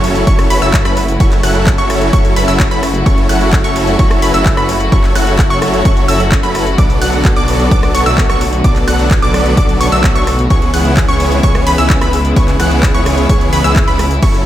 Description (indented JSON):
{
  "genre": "EDM, festival progressive house",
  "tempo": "129 BPM",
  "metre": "4/4",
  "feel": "straight",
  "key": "F# minor",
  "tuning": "A4 = 440 Hz",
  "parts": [
    { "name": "rich chamber string section", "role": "sustained chords", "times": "0.0-14.5 s", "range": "C#3 to F#4", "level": "-19 LUFS", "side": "left 1 dB", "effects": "sidechain pumping" },
    { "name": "wide unison pluck", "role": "arpeggios", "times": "0.0-14.4 s", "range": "B5 to F#6", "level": "-19 LUFS", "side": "right 1 dB", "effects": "sidechain pumping, tape echo" },
    { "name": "big supersaw lead", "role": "riff", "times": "0.0-14.4 s", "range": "E3 to F#5", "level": "-16 LUFS", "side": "equal", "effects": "sidechain pumping, tape echo" },
    { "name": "detuned saw bass", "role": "bass", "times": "0.0-14.4 s", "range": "F#1 to C#2", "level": "-17 LUFS", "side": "equal", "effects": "sidechain pumping" },
    { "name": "house drum kit", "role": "drums", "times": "0.0-14.4 s", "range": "crash cymbal, handclaps, hi-hat, rim click", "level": "-22 LUFS", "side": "equal", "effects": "none" },
    { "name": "impact", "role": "sound effects", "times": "0.0-1.2 s", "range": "none", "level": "barely audible", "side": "none", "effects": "none" },
    { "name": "electronic kick drum", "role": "drums", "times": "0.3-14.3 s", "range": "none", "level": "-13 LUFS", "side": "equal", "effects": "none" }
  ],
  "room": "moderate lush hall reverb, RT60 1.9 s",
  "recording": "dreamy mix soaked in reverb",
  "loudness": "-9 LUFS",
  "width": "side -12 dB against mid",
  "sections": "0.0-14.5 A section",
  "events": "impact 0.0-1.2",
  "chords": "0.0 F#m7; 6.8 Bm7; 10.5 C#m7",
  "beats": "0.27 0.74 | 1.20 1.67 2.13 2.60 | 3.06 3.53 3.99 4.46 | 4.92 5.39 5.85 6.32 | 6.78 7.25 7.71 8.18 | 8.64 9.11 9.57 10.04 | 10.50 10.97 11.43 11.90 | 12.36 12.83 13.29 13.76 | 14.22"
}